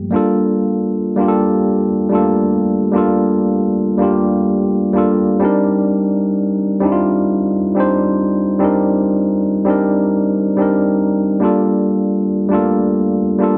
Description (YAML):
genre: hip hop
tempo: 85 BPM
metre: 4/4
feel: swing 65% on 16ths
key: G minor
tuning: A4 = 440 Hz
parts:
  - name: tine electric piano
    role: solo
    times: 0.0-13.6 s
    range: G2 to C5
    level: -16 LUFS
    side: equal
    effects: low-pass filter
room: wet studio reverb, RT60 0.6 s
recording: dark, warm production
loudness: -16 LUFS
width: mono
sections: 0.1-13.6 A section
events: none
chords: 0.1 Gm9; 5.4 Cm9; 11.4 Gm9